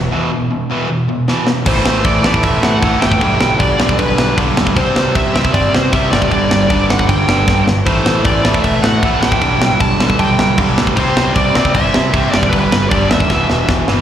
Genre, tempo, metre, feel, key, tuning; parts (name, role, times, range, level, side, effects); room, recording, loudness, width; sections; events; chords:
punk rock; 155 BPM; 4/4; straight; A4 = 438 Hz
crunchy overdriven guitar; riff; 0.0-14.0 s; E2 to C4; -15 LUFS; right 1 dB; slapback echo
growling picked electric bass; bass; 0.0-14.0 s; E1 to C3; -19 LUFS; equal; overdrive
tight metal drum kit; drums; 1.3-14.0 s; crash cymbal, kick drum, snare drum; -16 LUFS; equal
high-gain lead guitar; melody; 1.7-13.6 s; B4 to A5; -18 LUFS; equal; distortion, slapback echo
small room ambience; live gig heard through the venue's PA, recital hall reverb; -11 LUFS; side -10 dB against mid
0.0-1.7 A section; 1.7-14.0 B section
drum fill 1.3-1.7, 7.5-7.9, 13.3-14.0
0.0 E5; 1.7 Am; 3.2 G/B; 4.8 C; 6.1 G5; 7.9 Am; 9.4 G/B; 11.0 C; 12.3 G5; 13.3 Em